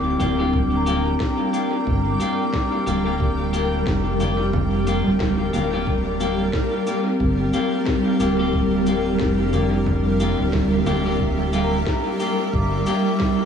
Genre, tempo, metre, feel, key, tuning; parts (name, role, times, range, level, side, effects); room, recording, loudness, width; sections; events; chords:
ambient dub; 90 BPM; 4/4; swing 58% on 16ths; G dorian; A4 = 435 Hz
granular cloud pad; sustained chords; 0.0-13.5 s; G3 to G5; -23 LUFS; equal; built-in reverb
vibraphone with soft mallets; arpeggios; 0.0-13.5 s; C4 to D6; -26 LUFS; left 1 dB; analog delay
round analog bass; bass; 0.0-12.8 s; D1 to G1; -24 LUFS; equal
clean electric guitar; stabs; 0.2-13.1 s; Bb3 to G4; -26 LUFS; left 3 dB; dub echo
electronic congas, shaker and snare drum; drums; 0.2-13.4 s; -32 LUFS; equal; dub echo
electronic kick drum; drums; 0.5-13.4 s; -26 LUFS; equal
moderate plate reverb, RT60 2.1 s; dreamy mix soaked in reverb, small room ambience; -18 LUFS; side -7 dB against mid
0.0-13.5 A section
0.0 Gm7